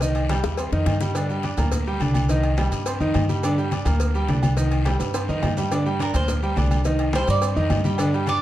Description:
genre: latin, salsa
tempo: 211 BPM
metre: 4/4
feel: straight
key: unclear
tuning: A4 = 439 Hz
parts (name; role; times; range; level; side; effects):
- clear concert grand piano; accompaniment; 0.0-8.4 s; D3 to D6; -24 LUFS; right 1 dB; none
- upright bass; bass; 0.0-8.4 s; C2 to G2; -23 LUFS; equal; none
- congas; percussion; 0.0-8.4 s; none; -30 LUFS; left 1 dB; none
- cowbell and bongos; percussion; 0.0-8.4 s; none; -34 LUFS; left 5 dB; none
- guiro; percussion; 0.0-8.4 s; none; -38 LUFS; left 6 dB; none
- maracas; percussion; 0.0-8.4 s; none; -41 LUFS; right 7 dB; none
- agogo bells and timbales; percussion; 0.2-8.4 s; none; -32 LUFS; right 2 dB; none
- Cuban tres; melody; 6.0-8.4 s; Bb4 to D5; -26 LUFS; right 3 dB; none
room: moderate large studio reverb, RT60 1.4 s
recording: dark, warm production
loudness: -20 LUFS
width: side -14 dB against mid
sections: 0.0-5.7 A section; 5.7-8.4 B section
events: drum fill 0.4-1.2, 5.0-5.7; Cuban tres solo 5.7-8.4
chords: 0.0 Cm; 1.2 Gm; 2.3 Cm; 3.4 Gm; 4.6 Cm; 5.7 Gm; 6.8 Cm

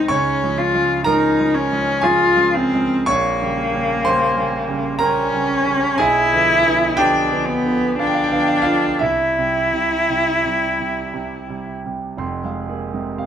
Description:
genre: classical, romantic duo for cello and grand piano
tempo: 54-64 BPM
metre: 3/4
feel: rubato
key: unclear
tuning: A4 = 440 Hz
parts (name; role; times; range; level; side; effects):
- rich cello; melody; 0.0-11.7 s; Bb3 to F4; -17 LUFS; left 2 dB; none
- clear concert grand piano; accompaniment; 0.0-13.3 s; F1 to Db6; -20 LUFS; right 3 dB; none
room: moderate recital hall reverb, RT60 1.3 s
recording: close, detailed microphones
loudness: -16 LUFS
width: side -9 dB against mid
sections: 0.0-12.2 A section; 12.2-13.3 A section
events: none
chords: 0.1 Db; 3.1 Gdim/Bb; 6.0 Bdim7; 9.0 C; 12.2 Fm

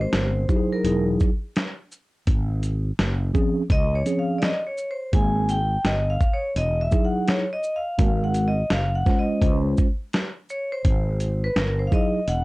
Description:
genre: hip hop, jazz-hop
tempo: 84 BPM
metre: 4/4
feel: swing 61% on 16ths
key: Ab major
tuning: A4 = 440 Hz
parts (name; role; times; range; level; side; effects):
- vibraphone with hard mallets; melody; 0.0-12.4 s; Bb4 to Ab5; -26 LUFS; equal; none
- mellow tine electric piano; accompaniment; 0.0-12.2 s; F3 to C5; -24 LUFS; equal; medium stereo tremolo
- fretless electric bass; bass; 0.0-12.4 s; E1 to Db2; -24 LUFS; equal; transformer saturation
- dusty soul sampler-style drum kit; drums; 0.1-12.4 s; hi-hat, kick drum, shaker, snare drum; -22 LUFS; equal; none
room: little or no reverb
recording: dry, gritty hardware recording, cassette tape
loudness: -20 LUFS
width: side -20 dB against mid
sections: 0.0-12.4 A section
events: vibraphone solo 0.0-12.4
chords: 0.0 Abmaj9; 0.8 Emaj9; 2.3 Ab7; 3.7 Dbmaj7; 5.1 Abmaj9; 6.6 Emaj9; 8.0 Ab9; 9.4 Dbmaj7; 10.8 Ab5

